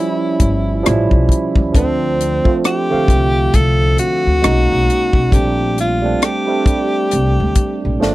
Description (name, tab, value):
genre	R&B, neo-soul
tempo	67 BPM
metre	4/4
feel	swing 59% on 16ths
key	unclear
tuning	A4 = 440 Hz
part	breathy tenor saxophone	melody	0.0-8.0 s	C4 to A4	-18 LUFS	left 1 dB	none
part	barky tine electric piano	accompaniment	0.0-8.1 s	D3 to F5	-18 LUFS	right 3 dB	overdrive, analog chorus
part	upright bass	bass	0.4-8.1 s	G1 to Eb2	-17 LUFS	equal	none
part	tight funk drum kit	drums	0.4-8.1 s	hi-hat, kick drum, rim click, snare drum	-15 LUFS	left 1 dB	none
room	little or no reverb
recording	dry, close 1970s-style studio recording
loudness	-12 LUFS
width	side -17 dB against mid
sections	0.0-8.1 A section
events	none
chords	0.0 A7b13; 1.7 Dm7; 4.4 Bmaj13; 5.3 Bbmaj13